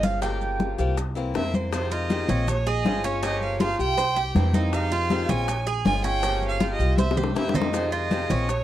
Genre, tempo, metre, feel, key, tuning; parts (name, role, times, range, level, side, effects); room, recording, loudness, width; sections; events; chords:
latin, Cuban son and guajira; 160 BPM; 4/4; straight; F minor; A4 = 435 Hz
picked swing-style acoustic guitar; accompaniment; 0.0-8.5 s; C3 to G4; -30 LUFS; left 5 dB
Cuban tres; arpeggios; 0.0-8.6 s; Db4 to G5; -29 LUFS; right 4 dB
upright bass; bass; 0.0-8.6 s; G1 to F2; -27 LUFS; equal
bongos; percussion; 0.0-8.6 s; -31 LUFS; left 6 dB
congas; percussion; 0.0-8.6 s; -26 LUFS; left 2 dB
maracas; percussion; 0.0-8.6 s; -43 LUFS; right 18 dB
clear violin; melody; 1.4-8.6 s; C5 to Ab5; -29 LUFS; right 3 dB
little or no reverb; dry, close 1970s-style studio recording; -22 LUFS; side -12 dB against mid
0.0-1.7 A section; 1.7-8.6 B section
Cuban tres solo 0.0-1.7; drum fill 7.0-7.7
0.2 Gm7b5; 1.0 C7; 1.7 Fm7; 2.5 Bbm7; 3.2 Gm7b5; 4.0 C7; 4.7 Fm7; 5.5 Bbm7; 6.2 Gm7b5; 7.0 C7; 7.7 Fm7